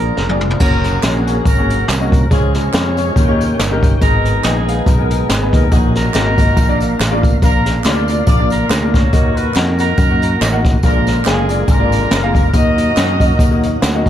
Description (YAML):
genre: uptempo gospel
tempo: 141 BPM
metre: 4/4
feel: swing 56% on 8ths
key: Eb minor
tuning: A4 = 440 Hz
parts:
  - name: warm horn section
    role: melody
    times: 0.0-13.8 s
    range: Cb4 to Eb5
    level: -20 LUFS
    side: left 1 dB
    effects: dub echo
  - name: clear grand piano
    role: accompaniment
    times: 0.0-14.1 s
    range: Ab2 to Gb5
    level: -20 LUFS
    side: left 3 dB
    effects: none
  - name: tonewheel organ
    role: sustained chords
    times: 0.0-14.1 s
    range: D3 to G5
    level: -23 LUFS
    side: right 4 dB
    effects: fast rotary speaker, chorus vibrato
  - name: fingered electric bass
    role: bass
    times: 0.0-14.1 s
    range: F1 to Gb2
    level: -17 LUFS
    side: equal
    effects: none
  - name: jazz brush drum kit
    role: drums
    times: 0.2-14.1 s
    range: crash cymbal, hi-hat, kick drum, snare drum, toms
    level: -15 LUFS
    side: equal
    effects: none
  - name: tambourine and handclaps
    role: percussion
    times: 0.6-13.9 s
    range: none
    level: -29 LUFS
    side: right 4 dB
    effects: dub echo
room: light reverb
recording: echo-heavy mix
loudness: -11 LUFS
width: side -11 dB against mid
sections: 0.6-14.1 A section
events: drum fill 0.2-0.6; grand piano fill 13.4-14.1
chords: 0.0 Bb7; 0.6 Gb; 2.3 Db; 3.2 Eb7; 4.0 Abm; 5.7 Ebm/Bb; 6.6 Bb; 9.1 Ebm; 10.8 Bb7; 12.5 Ebm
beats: 0.18 | 0.60 1.03 1.46 1.89 | 2.31 2.74 3.16 3.59 | 4.01 4.44 4.87 5.29 | 5.72 6.14 6.57 7.00 | 7.42 7.85 8.28 8.70 | 9.13 9.55 9.98 10.41 | 10.83 11.26 11.69 12.11 | 12.54 12.97 13.39 13.82